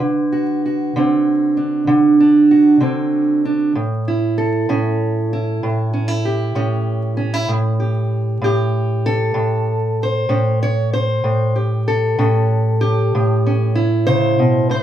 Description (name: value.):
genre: acoustic country blues, solo or duo.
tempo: 64 BPM (dotted quarters).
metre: 12/8.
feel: straight.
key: unclear.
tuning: A4 = 444 Hz.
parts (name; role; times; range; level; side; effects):
fingerpicked steel-string acoustic guitar; solo; 0.0-14.8 s; A2 to C#5; -15 LUFS; right 1 dB; none.
room: light reverb.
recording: vinyl crackle, small room reverb.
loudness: -15 LUFS.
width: side -10 dB against mid.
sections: 0.0-14.8 A section.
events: none.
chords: 0.0 D7; 3.8 A7.